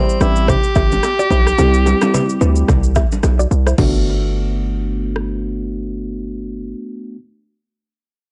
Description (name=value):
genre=afrobeats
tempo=109 BPM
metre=4/4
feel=swing 58% on 16ths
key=G major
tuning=A4 = 440 Hz
part: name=breathy tenor saxophone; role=melody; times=0.0-3.2 s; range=C4 to G4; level=-21 LUFS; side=equal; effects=low-pass filter
part: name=bell-like tine electric piano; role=accompaniment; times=0.0-7.2 s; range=G3 to G4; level=-24 LUFS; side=equal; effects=phaser, low-pass filter
part: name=direct-recorded clean electric guitar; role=riff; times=0.0-4.0 s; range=B3 to E5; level=-26 LUFS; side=equal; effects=low-pass filter, analog delay
part: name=deep house drum kit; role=drums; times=0.1-5.3 s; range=crash cymbal, kick drum, rim click, shaker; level=-22 LUFS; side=equal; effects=overdrive
part: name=hard-hitting 808-style bass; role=bass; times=0.2-6.7 s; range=G1 to D2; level=-19 LUFS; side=equal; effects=none
part: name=congas and bongos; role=percussion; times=0.5-4.0 s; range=none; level=-25 LUFS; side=equal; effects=none
room=little or no reverb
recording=dry, gritty hardware recording, nothing above 10.8 kHz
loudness=-16 LUFS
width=mono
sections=0.0-3.8 A section; 3.8-6.0 B section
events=filter sweep 0.0-3.8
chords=0.0 C; 3.8 Gmaj7